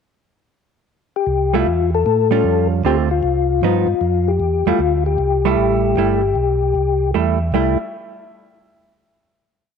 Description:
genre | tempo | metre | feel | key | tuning
jazz | 154 BPM | 4/4 | swing 65% on 8ths | C major | A4 = 443 Hz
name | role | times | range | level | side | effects
percussive tonewheel organ | melody | 1.2-7.8 s | E4 to A4 | -18 LUFS | left 10 dB | slow rotary speaker, chorus vibrato
mellow tonewheel organ | bass | 1.3-7.8 s | G1 to A2 | -20 LUFS | right 1 dB | chorus vibrato, slow rotary speaker
hollow-body jazz guitar | accompaniment | 1.5-7.8 s | D3 to E#4 | -20 LUFS | right 12 dB | none
room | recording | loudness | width
moderate spring reverb, RT60 1.9 s | 1960s-style stereo with parts hard left and right | -15 LUFS | side -6 dB against mid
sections
0.0-1.3 pickup bar; 1.3-7.5 A section; 7.5-9.1 final chord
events
none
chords
0.0 N.C.; 1.3 C6; 2.1 Aaug7; 2.8 Dm7; 3.6 Gaug7; 4.4 C6

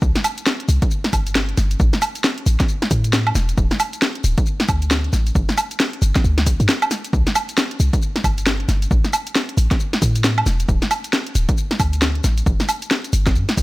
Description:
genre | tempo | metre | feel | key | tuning
UK garage, two-step garage | 135 BPM | 4/4 | swing 61% on 16ths | unclear | A4 = 439 Hz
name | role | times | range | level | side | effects
short 808-style bass | bass | 0.0-13.6 s | D1 to A2 | -18 LUFS | equal | none
electronic kick drum | drums | 0.0-13.6 s | none | -19 LUFS | equal | overdrive, studio reverb
garage drum kit | drums | 0.0-13.6 s | hi-hat, shaker, snare drum, woodblock | -20 LUFS | equal | overdrive, studio reverb
room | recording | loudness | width
digital ambience | none | -16 LUFS | side -19 dB against mid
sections
0.0-13.6 A section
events
none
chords
none

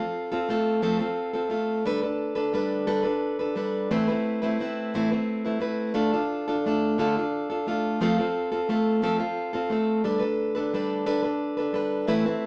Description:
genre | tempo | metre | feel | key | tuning
rock | 58 BPM (dotted quarters) | 6/8 | straight | unclear | A4 = 439 Hz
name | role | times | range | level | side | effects
picked plugged-in steel-string acoustic guitar | solo | 0.0-12.5 s | A2 to B4 | -26 LUFS | equal | none
room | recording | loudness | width
wet studio ambience, RT60 0.5 s | none | -26 LUFS | mono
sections
0.0-12.5 A section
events
none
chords
0.0 F; 1.9 Gadd9; 3.9 Amadd9; 6.0 Dm; 8.0 F; 10.1 Gadd9

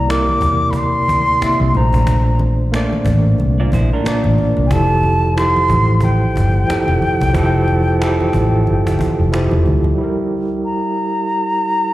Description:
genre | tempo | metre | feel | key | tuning
R&B, neo-soul | 91 BPM | 4/4 | swing 58% on 16ths | unclear | A4 = 435 Hz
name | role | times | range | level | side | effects
silver concert flute | melody | 0.0-11.9 s | G5 to D6 | -18 LUFS | equal | none
overdriven tine electric piano | accompaniment | 0.0-11.9 s | Bb2 to E5 | -18 LUFS | right 1 dB | fast tremolo, slapback echo
vintage muted fingered electric bass | bass | 0.0-9.9 s | E1 to E2 | -16 LUFS | equal | none
cajon | drums | 0.1-9.8 s | none | -25 LUFS | equal | none
congas | percussion | 0.1-10.0 s | none | -27 LUFS | left 1 dB | none
electric guitar through a small old amp | second line | 3.6-4.7 s | D4 to D5 | -23 LUFS | right 2 dB | warbly pitch drift, slapback echo
room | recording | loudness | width
little or no reverb | live gig heard through the venue's PA, recital hall reverb | -13 LUFS | side -16 dB against mid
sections
0.0-10.0 A section; 10.0-11.9 B section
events
none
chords
0.0 C9; 1.7 Bbmaj9; 4.7 Fmaj9; 10.0 Gm6

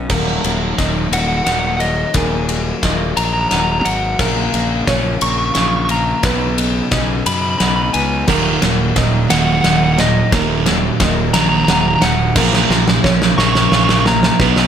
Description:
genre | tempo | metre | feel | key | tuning
post-rock | 59 BPM (dotted quarters) | 6/8 | straight | Eb minor | A4 = 438 Hz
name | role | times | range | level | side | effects
pedal steel guitar | sustained chords | 0.0-14.7 s | Db3 to B4 | -26 LUFS | left 1 dB | none
felt-muted upright piano | arpeggios | 0.0-14.7 s | Bb4 to F#5 | -28 LUFS | right 4 dB | slapback echo
twelve-string electric guitar | arpeggios | 0.0-14.7 s | Eb2 to F4 | -24 LUFS | left 4 dB | wide subtle chorus, slapback echo
fuzz fingered electric bass | bass | 0.0-14.7 s | Eb1 to F#2 | -20 LUFS | left 1 dB | overdrive
big rock drum kit | drums | 0.1-14.7 s | crash cymbal, kick drum, ride cymbal, snare drum | -17 LUFS | left 1 dB | none
lightly driven lead guitar | melody | 1.1-14.4 s | Eb5 to Db6 | -19 LUFS | equal | slapback echo
sludgy distorted guitar | riff | 8.3-14.7 s | Eb2 to B3 | -17 LUFS | right 7 dB | overdrive
room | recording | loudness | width
light reverb, small room reverb | none | -13 LUFS | side -8 dB against mid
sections
0.1-14.7 A section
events
build-up 0.1-14.7; drum fill 0.1-14.7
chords
0.1 Ebm; 4.2 Bbm; 6.2 Badd9; 8.3 Ebm; 12.4 Bbm

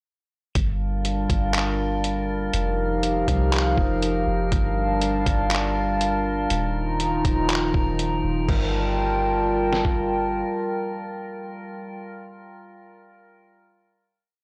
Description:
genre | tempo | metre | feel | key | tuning
hip hop, atmospheric cloud-rap | 121 BPM | 4/4 | half-time | G minor | A4 = 440 Hz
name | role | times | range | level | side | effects
dark analog pad | sustained chords | 0.6-12.0 s | Eb3 to Bb5 | -27 LUFS | equal | chorus, sidechain pumping
soft 808-style bass | bass | 0.6-10.4 s | Eb1 to C2 | -29 LUFS | equal | none
trip hop sampler-style drum kit | drums | 0.6-10.0 s | crash cymbal, handclaps, hi-hat, kick drum, snare drum | -28 LUFS | equal | none
drifting glass-harmonics texture | texture | 0.9-12.0 s | F3 to Bb4 | -36 LUFS | equal | chorus, built-in reverb
room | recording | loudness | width
little or no reverb | dry, gritty hardware recording, cassette tape | -23 LUFS | mono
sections
0.6-8.5 verse; 8.5-12.5 final chord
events
none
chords
0.6 Gm7; 2.5 F7sus4; 4.5 Gm7; 6.5 Ebsus2; 8.5 Gm7

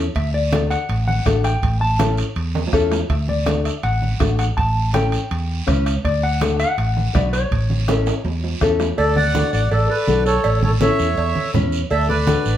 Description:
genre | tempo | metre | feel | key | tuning
latin, cumbia | 163 BPM | 4/4 | straight | D major | A4 = 440 Hz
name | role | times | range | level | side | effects
nylon-string guitar | accompaniment | 0.0-12.5 s | C#4 to B4 | -22 LUFS | left 4 dB | none
fingered electric bass | bass | 0.0-12.6 s | A1 to E2 | -20 LUFS | equal | none
guiro | percussion | 0.1-12.6 s | none | -34 LUFS | right 6 dB | none
mellow electric guitar | second line | 0.2-12.6 s | A4 to A5 | -24 LUFS | left 2 dB | none
bombo | percussion | 0.2-9.0 s | none | -24 LUFS | right 1 dB | none
congas | percussion | 0.2-12.5 s | none | -25 LUFS | right 1 dB | none
timbales and cowbell | percussion | 0.2-12.1 s | none | -29 LUFS | right 5 dB | none
accordion | melody | 9.0-12.6 s | A4 to F#5 | -20 LUFS | right 3 dB | none
room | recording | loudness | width
wet studio reverb, RT60 0.8 s | band playing live in one room | -16 LUFS | side -11 dB against mid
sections
0.0-9.0 A section; 9.0-12.6 B section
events
clean electric guitar solo 0.0-9.0; drum fill 2.5-3.1, 7.9-9.0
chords
0.2 D; 1.6 A; 3.1 D; 4.6 A7; 6.0 D; 7.5 A; 9.0 D; 10.4 A; 11.9 D

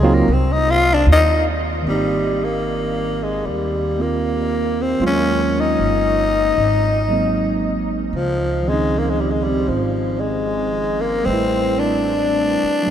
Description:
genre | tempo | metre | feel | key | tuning
jazz ballad | 76 BPM | 4/4 | swing 69% on 8ths | Ab major | A4 = 440 Hz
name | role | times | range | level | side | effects
growling tenor saxophone | melody | 0.0-12.9 s | F3 to F4 | -19 LUFS | left 2 dB | none
tine electric piano | accompaniment | 0.0-12.9 s | Eb3 to Cb5 | -22 LUFS | right 3 dB | none
upright bass | bass | 0.0-12.9 s | G1 to Eb2 | -22 LUFS | equal | none
room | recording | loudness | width
wet huge ambient reverb, RT60 7.8 s | in a vast, echoing space | -16 LUFS | side -9 dB against mid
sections
0.0-1.9 A section; 1.9-12.9 B section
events
tenor saxophone solo 0.0-1.9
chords
0.3 Cm; 1.9 Abmaj9; 5.0 Ebm11; 6.6 Ab9; 8.1 Dbmaj9; 11.3 Am7

